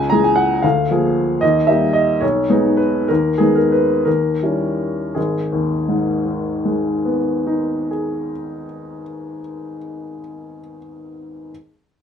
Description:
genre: classical, romantic character piece for solo piano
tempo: 51-77 BPM (dotted quarters)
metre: 6/8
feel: rubato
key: G# minor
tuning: A4 = 442 Hz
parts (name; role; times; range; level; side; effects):
- clear upright piano; solo; 0.0-11.5 s; G#1 to A#5; -16 LUFS; left 1 dB; none
room: light reverb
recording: none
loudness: -15 LUFS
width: side -8 dB against mid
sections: 0.0-5.2 A section; 5.2-9.3 B section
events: slowing down 0.6-5.2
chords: 0.0 C#m; 0.6 A#7/D; 1.4 D#; 2.2 G#m/B; 3.1 G#m/D#; 4.1 D#7b9; 5.2 G#m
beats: 0.63 | 1.42 2.22 | 3.09 4.06 | 5.16 6.20 | 7.22 8.26

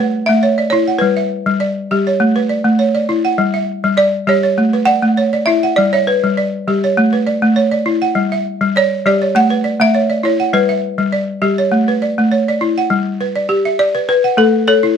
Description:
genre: west african traditional, West African string and xylophone music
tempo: 101 BPM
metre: 4/4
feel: swing 53% on 16ths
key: G lydian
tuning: A4 = 440 Hz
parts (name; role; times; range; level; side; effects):
- balafon; melody; 0.0-15.0 s; A4 to F#5; -15 LUFS; left 1 dB; none
- balafon; arpeggios; 0.0-15.0 s; G3 to F#5; -14 LUFS; equal; none
room: light reverb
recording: dark, warm production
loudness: -12 LUFS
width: side -7 dB against mid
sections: 0.0-12.9 A section; 12.9-15.0 B section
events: none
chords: 0.0 A; 1.0 G; 2.2 A; 3.4 G5; 4.6 A; 5.8 G; 7.0 A; 8.2 G5; 9.3 A; 10.5 G; 11.7 A; 12.9 G; 14.1 A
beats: 0.43 | 1.02 1.62 2.21 2.81 | 3.40 3.99 4.59 5.18 | 5.77 6.37 6.96 7.56 | 8.15 8.74 9.34 9.93 | 10.53 11.12 11.71 12.31 | 12.90 13.49 14.09 14.68

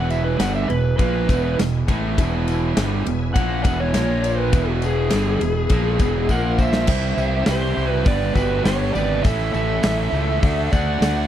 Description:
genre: classic rock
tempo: 102 BPM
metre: 4/4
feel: straight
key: unclear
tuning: A4 = 440 Hz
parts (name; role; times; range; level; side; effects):
- lead guitar through a small cranked amp; melody; 0.0-11.3 s; F#4 to F#5; -24 LUFS; equal; overdrive, slapback echo
- bright tonewheel organ; sustained chords; 0.0-6.9 s; E#3 to A#4; -33 LUFS; left 1 dB; slow rotary speaker, chorus vibrato
- biting overdriven guitar; riff; 0.0-11.3 s; E2 to G4; -25 LUFS; right 8 dB; none
- raw garage guitar; riff; 0.0-11.3 s; E2 to A4; -29 LUFS; left 11 dB; overdrive
- fuzz fingered electric bass; bass; 0.0-11.3 s; E1 to D2; -23 LUFS; left 1 dB; overdrive
- big rock drum kit; drums; 0.1-11.2 s; crash cymbal, hi-hat, kick drum, ride cymbal, snare drum; -22 LUFS; left 1 dB; none
- tambourine; percussion; 0.1-11.2 s; none; -43 LUFS; left 9 dB; none
- fuzz lead guitar; second line; 6.3-11.3 s; F#4 to D5; -30 LUFS; right 4 dB; distortion
room: little or no reverb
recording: dry, close 1970s-style studio recording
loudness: -17 LUFS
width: side -11 dB against mid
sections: 0.0-6.9 A section; 6.9-11.3 B section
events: lead electric guitar solo 0.0-6.9; drum fill 6.3-6.9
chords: 0.0 E; 3.9 A#5; 4.5 E; 6.3 A#5; 6.9 C; 8.1 G; 9.2 A; 10.4 D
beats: 0.40 0.99 1.58 | 2.17 2.76 3.35 3.94 | 4.53 5.12 5.71 6.30 | 6.89 7.48 8.07 8.66 | 9.25 9.84 10.43 11.02

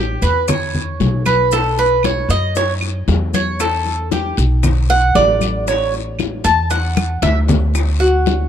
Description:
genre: latin, Cuban son and guajira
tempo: 116 BPM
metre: 4/4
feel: straight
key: unclear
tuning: A4 = 440 Hz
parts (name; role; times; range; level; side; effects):
- Cuban tres; arpeggios; 0.0-8.5 s; F#4 to A5; -17 LUFS; right 2 dB; none
- upright bass; bass; 0.0-8.5 s; A1 to F#2; -18 LUFS; equal; none
- congas; percussion; 0.2-8.5 s; none; -21 LUFS; left 2 dB; none
- guiro; percussion; 0.2-8.5 s; none; -31 LUFS; left 8 dB; none
- maracas; percussion; 0.2-8.5 s; none; -31 LUFS; left 7 dB; none
- bongos; percussion; 0.5-8.5 s; none; -25 LUFS; left 7 dB; none
- claves; percussion; 0.5-8.0 s; none; -27 LUFS; right 3 dB; none
room: little or no reverb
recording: dark, warm production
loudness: -14 LUFS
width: side -9 dB against mid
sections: 0.0-7.7 A section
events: Cuban tres solo 0.0-7.7; drum fill 7.0-7.7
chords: 0.0 A (rootless); 1.5 B5; 3.6 E5; 5.7 A5; 7.7 D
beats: 0.49 1.00 | 1.52 2.04 2.56 3.08 | 3.60 4.12 4.63 5.15 | 5.67 6.19 6.71 7.23 | 7.75 8.27

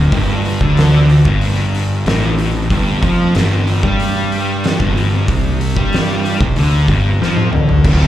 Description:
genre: stoner and doom metal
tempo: 93 BPM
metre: 4/4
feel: straight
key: unclear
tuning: A4 = 439 Hz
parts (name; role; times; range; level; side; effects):
- thick fuzz guitar; riff; 0.0-8.1 s; D2 to G3; -15 LUFS; equal; distortion
- fuzz fingered electric bass; bass; 0.0-8.1 s; D1 to G2; -17 LUFS; equal; overdrive, tube saturation
- oversized low-tuned drum kit; drums; 0.1-8.0 s; crash cymbal, hi-hat, kick drum, snare drum, toms; -17 LUFS; equal; none
room: small room ambience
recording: live gig heard through the venue's PA, club ambience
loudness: -12 LUFS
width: side -12 dB against mid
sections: 0.0-7.8 A section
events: drum fill 7.2-7.8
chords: 0.0 D5; 2.7 G5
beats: | 0.12 0.77 1.41 2.06 | 2.70 3.35 3.99 4.64 | 5.28 5.92 6.56 7.20 | 7.84

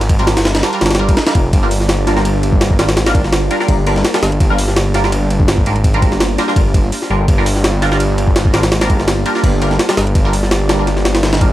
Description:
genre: drum and bass, jungle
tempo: 167 BPM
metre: 4/4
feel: swing 53% on 16ths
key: G phrygian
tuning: A4 = 439 Hz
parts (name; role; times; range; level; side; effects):
- band-passed chord stab; stabs; 0.0-11.5 s; G3 to Bb4; -20 LUFS; right 1 dB; phaser, wide subtle chorus, dub echo
- detuned saw bass; bass; 0.0-11.5 s; F1 to Ab1; -16 LUFS; equal; none
- jungle sampler-style drum kit; drums; 0.0-11.5 s; hi-hat, kick drum, ride cymbal, snare drum; -14 LUFS; equal; overdrive
- warbly tape-like pad; sustained chords; 1.7-10.8 s; Bb3 to D5; -23 LUFS; right 1 dB; chorus, built-in reverb
room: little or no reverb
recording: dry, gritty hardware recording, transformer saturation, vinyl crackle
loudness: -11 LUFS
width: side -14 dB against mid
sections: 0.0-11.5 A section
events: none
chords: 0.0 Gm7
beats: | 0.09 0.45 0.81 1.17 | 1.53 1.89 2.25 2.61 | 2.97 3.33 3.69 4.05 | 4.41 4.76 5.12 5.48 | 5.84 6.20 6.56 6.92 | 7.28 7.64 8.00 8.36 | 8.72 9.08 9.44 9.79 | 10.15 10.51 10.87 11.23

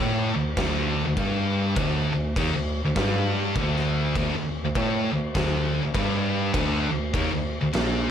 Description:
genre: stoner and doom metal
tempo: 101 BPM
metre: 4/4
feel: swing 61% on 8ths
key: unclear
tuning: A4 = 445 Hz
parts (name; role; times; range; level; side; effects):
- scooped high-gain guitar; riff; 0.0-8.1 s; D2 to Bb3; -30 LUFS; left 1 dB; distortion
- thick fuzz guitar; riff; 0.0-8.1 s; D2 to Bb3; -29 LUFS; left 8 dB; distortion
- thick fuzz guitar; riff; 0.0-8.1 s; D2 to Bb3; -29 LUFS; right 7 dB; distortion
- mellow bass clarinet; bass; 0.0-8.1 s; Bb1 to A2; -29 LUFS; equal; tube saturation
- oversized low-tuned drum kit; drums; 0.6-7.9 s; crash cymbal, kick drum, snare drum; -29 LUFS; equal; none
room: light reverb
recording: none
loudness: -22 LUFS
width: side -8 dB against mid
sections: 0.0-8.1 A section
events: none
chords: 0.0 D5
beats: 0.58 1.17 | 1.77 2.37 2.97 3.56 | 4.16 4.76 5.35 5.95 | 6.54 7.14 7.74

